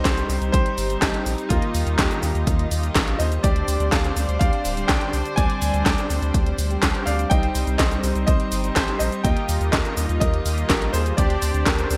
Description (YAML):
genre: italo disco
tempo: 124 BPM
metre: 4/4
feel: straight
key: C minor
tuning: A4 = 440 Hz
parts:
  - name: bright concert grand piano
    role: melody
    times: 0.0-12.0 s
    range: Bb3 to Ab5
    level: -29 LUFS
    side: equal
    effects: delay
  - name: rich studio string section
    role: sustained chords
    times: 0.0-12.0 s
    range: D3 to C5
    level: -33 LUFS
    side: equal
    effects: vintage 12-bit sampler grit
  - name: mellow synth brass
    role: stabs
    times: 0.0-12.0 s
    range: G3 to G5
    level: -32 LUFS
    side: equal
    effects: chorus, cassette tape
  - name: round analog bass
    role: bass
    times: 0.0-12.0 s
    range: D1 to Eb2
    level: -26 LUFS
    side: equal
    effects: tube saturation
  - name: electronic kick drum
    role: drums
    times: 0.1-11.8 s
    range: none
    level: -25 LUFS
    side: equal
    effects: none
  - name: house drum kit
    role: drums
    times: 0.1-12.0 s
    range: cabasa, handclaps, hi-hat, snare drum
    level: -27 LUFS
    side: equal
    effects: overdrive, gated reverb
room: light reverb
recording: bright 1980s-style digital production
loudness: -21 LUFS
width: mono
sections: 0.0-12.0 A section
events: none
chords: 0.0 Cm; 1.5 Ebadd9; 3.4 Gsus4/D; 7.3 Cm; 9.2 Ebadd9; 11.2 Gsus4/D